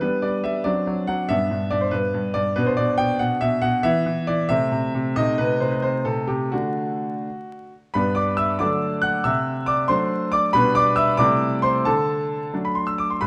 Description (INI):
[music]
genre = classical-period piano sonatina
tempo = 83-95 BPM (dotted quarters)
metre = 6/8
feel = rubato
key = unclear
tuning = A4 = 441 Hz
[part]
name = clear grand piano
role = solo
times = 0.0-13.3 s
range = G2 to F#6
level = -22 LUFS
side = equal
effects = none
[sound]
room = moderate recital hall reverb, RT60 1.7 s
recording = close, detailed microphones, vinyl crackle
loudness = -22 LUFS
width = mono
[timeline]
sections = 0.0-7.9 A section; 7.9-13.3 B section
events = none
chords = 0.0 G; 0.7 D7/F#; 1.3 G; 2.6 Bm; 3.8 E5; 4.5 Am/C; 5.2 Adim/C; 6.5 D; 7.9 G; 8.6 D; 9.3 D7/C; 10.5 G/B; 11.2 Am7/C; 11.9 D